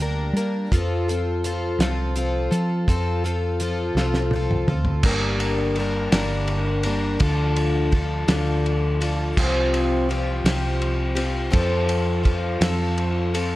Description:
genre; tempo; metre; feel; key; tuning
folk rock and heartland rock; 56 BPM (dotted quarters); 6/8; straight; G minor; A4 = 439 Hz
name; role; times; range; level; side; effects
picked plugged-in twelve-string acoustic guitar; accompaniment; 0.0-13.6 s; G2 to Bb4; -24 LUFS; left 2 dB; none
hollow-body short-scale fingered electric bass; bass; 0.0-13.6 s; G1 to G3; -24 LUFS; right 1 dB; none
cloth-damped thuddy drum kit; drums; 0.0-13.5 s; crash cymbal, hi-hat, kick drum, ride cymbal, snare drum, toms; -25 LUFS; equal; none
room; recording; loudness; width
light reverb, studio reverb; dark, warm production; -20 LUFS; side -16 dB against mid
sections
0.0-5.0 A section; 5.0-13.6 B section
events
drum fill 4.0-5.0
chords
0.0 Gm; 0.7 F; 5.0 Gm; 7.2 Dm; 9.4 Csus4; 11.5 F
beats
| 0.71 1.79 | 2.88 3.96 | 5.04 6.13 | 7.21 8.29 | 9.37 10.45 | 11.53 12.61

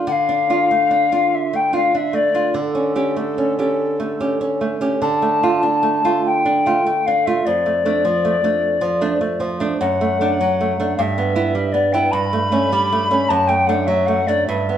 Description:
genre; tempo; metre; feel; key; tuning
romantic duo for recorder and classical guitar; 45-53 BPM (dotted quarters); 6/8; rubato; D minor, D major from 9.8 s; A4 = 440 Hz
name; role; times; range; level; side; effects
nylon-string guitar; accompaniment; 0.0-14.8 s; F2 to G4; -19 LUFS; right 3 dB; none
mellow hollow alto recorder; melody; 0.1-14.8 s; A4 to B5; -18 LUFS; left 3 dB; none
room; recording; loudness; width
wet large studio reverb, RT60 1.1 s; band playing live in one room; -16 LUFS; side -9 dB against mid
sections
0.1-14.8 A section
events
none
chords
0.1 Dm; 2.6 A7/D; 5.0 Dm; 7.5 Dm/F; 9.8 D/F#; 11.0 Em/G; 12.1 A7/G; 13.3 D/F#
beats
| 0.08 1.34 | 2.55 3.80 | 5.02 6.25 | 7.46 8.62 | 9.80 10.97 | 12.12 13.28 | 14.48

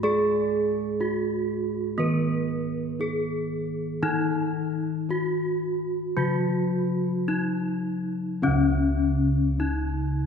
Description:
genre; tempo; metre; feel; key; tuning
Javanese gamelan; 52-63 BPM; 4/4; straight; Db slendro; A4 = 440 Hz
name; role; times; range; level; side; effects
gamelan-type bronze metallophone; melody; 0.0-10.3 s; Db4 to Cb5-45c; -28 LUFS; left 1 dB; none
gamelan-type bronze metallophone; accompaniment; 0.0-10.3 s; Db3 to Cb4-45c; -28 LUFS; equal; none
gamelan-type bossed gongs; bass; 0.0-10.3 s; Db2 to Ab4+25c; -28 LUFS; equal; none
room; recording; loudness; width
wet concert hall reverb, RT60 2.4 s; heard from further back in the room; -23 LUFS; side -7 dB against mid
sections
0.0-8.4 A section; 8.4-10.3 B section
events
none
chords
none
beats
| 0.03 0.99 1.98 2.99 | 4.02 5.08 6.17 7.29 | 8.43 9.59

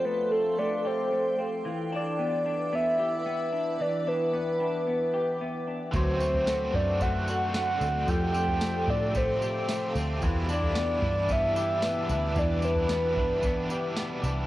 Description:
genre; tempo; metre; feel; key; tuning
dream pop; 112 BPM; 4/4; straight; E minor; A4 = 440 Hz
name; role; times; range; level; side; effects
soft octave-layered synth lead; melody; 0.0-14.2 s; A4 to G5; -28 LUFS; equal; chorus, cassette tape, tape echo
granular cloud pad; sustained chords; 0.0-14.5 s; A4 to D6; -35 LUFS; right 1 dB; built-in reverb
semi-hollow electric guitar; arpeggios; 0.0-14.5 s; E3 to G4; -34 LUFS; left 2 dB; lush chorus, tape echo
crunchy overdriven guitar; accompaniment; 5.9-14.5 s; E2 to G4; -35 LUFS; right 1 dB; tremolo, analog chorus
vintage muted picked electric bass; bass; 5.9-14.5 s; C2 to A2; -31 LUFS; equal; tube saturation
soft vintage rhythm box; drums; 5.9-14.4 s; kick drum, snare drum, tambourine, toms; -32 LUFS; equal; none
room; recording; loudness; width
moderate small room reverb, RT60 0.5 s; home recording on cassette; -25 LUFS; side -15 dB against mid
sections
0.0-14.5 A section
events
none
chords
0.0 Fadd9; 1.6 Em7; 5.9 D7; 8.1 Fadd9; 10.2 Em7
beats
0.04 0.58 1.11 | 1.65 2.18 2.72 3.25 | 3.79 4.33 4.86 5.40 | 5.93 6.47 7.00 7.54 | 8.08 8.61 9.15 9.68 | 10.22 10.76 11.29 11.83 | 12.36 12.90 13.43 13.97

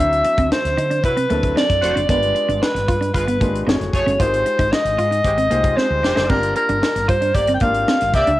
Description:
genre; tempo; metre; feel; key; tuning
polished 1980s jazz-funk pop; 114 BPM; 4/4; straight; unclear; A4 = 440 Hz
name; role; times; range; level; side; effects
breathy alto saxophone; melody; 0.0-8.4 s; Bb4 to G5; -18 LUFS; equal; none
warm concert grand piano; accompaniment; 0.0-8.4 s; F#3 to D5; -27 LUFS; left 3 dB; lush chorus, cassette tape
clean electric guitar; riff; 0.0-8.4 s; Bb3 to F4; -25 LUFS; right 2 dB; wide subtle chorus, cassette tape
woody fretless electric bass; bass; 0.0-8.4 s; F1 to D3; -24 LUFS; equal; lush chorus
tight funk drum kit; drums; 0.1-8.4 s; hi-hat, kick drum, snare drum, splash cymbal; -22 LUFS; equal; cassette tape
warm horn section; second line; 1.0-8.3 s; F#3 to D5; -27 LUFS; right 1 dB; cassette tape
room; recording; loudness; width
light reverb, small room ambience; home recording on cassette; -15 LUFS; side -16 dB against mid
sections
0.0-8.4 A section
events
drum fill 5.8-6.3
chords
0.0 D13; 2.1 G7b9; 3.7 F#m9; 4.2 Fm9/Ab; 6.3 Gm7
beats
0.51 1.04 1.56 | 2.09 2.62 3.14 3.67 | 4.19 4.72 5.25 5.77 | 6.30 6.83 7.35 7.88

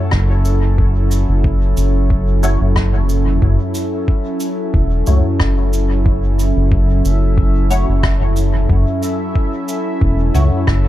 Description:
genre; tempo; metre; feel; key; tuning
ambient dub; 91 BPM; 4/4; swing 53% on 16ths; F# minor; A4 = 440 Hz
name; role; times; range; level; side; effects
warbly tape-like pad; sustained chords; 0.0-10.9 s; F#3 to A4; -21 LUFS; equal; chorus, built-in reverb
round analog bass; bass; 0.1-10.9 s; E1 to C#2; -14 LUFS; equal; none
electronic kick drum; drums; 0.1-10.8 s; none; -16 LUFS; equal; none
soft-mallet drum kit; drums; 0.1-10.8 s; cabasa, rim click, toms; -22 LUFS; left 1 dB; dub echo
filtered dub chord stab; stabs; 2.4-10.6 s; A3 to C#5; -27 LUFS; left 3 dB; phaser, ensemble chorus, dub echo
bubbling stepped-filter texture; texture; 3.4-10.9 s; E4 to E5; -29 LUFS; equal; chorus, built-in reverb
room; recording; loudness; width
studio reverb; dark, warm production; -13 LUFS; side -14 dB against mid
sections
0.0-10.9 A section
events
none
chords
0.0 F#m7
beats
0.12 | 0.78 1.44 2.10 2.76 | 3.42 4.08 4.74 5.40 | 6.06 6.72 7.38 8.04 | 8.70 9.36 10.02 10.68

